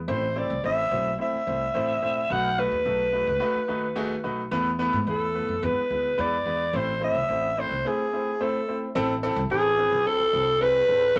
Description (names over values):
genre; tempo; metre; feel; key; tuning
uptempo 1960s-style soul; 108 BPM; 4/4; straight; A harmonic minor; A4 = 443 Hz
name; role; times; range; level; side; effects
upright bass; bass; 0.0-11.2 s; F1 to G#2; -36 LUFS; equal; none
breathy alto saxophone; melody; 0.1-11.2 s; G#4 to F#5; -26 LUFS; equal; none
warm grand piano; accompaniment; 0.1-11.2 s; G#3 to C5; -31 LUFS; equal; none
room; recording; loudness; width
light reverb; none; -25 LUFS; mono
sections
0.0-9.0 A section; 9.0-11.2 A section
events
none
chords
0.1 Am; 2.3 B7; 4.5 Esus4; 5.6 E; 6.7 Am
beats
| 0.07 0.63 1.19 1.74 | 2.30 2.85 3.41 3.96 | 4.52 5.07 5.63 6.18 | 6.74 7.29 7.85 8.40 | 8.95 9.51 10.06 10.61 | 11.16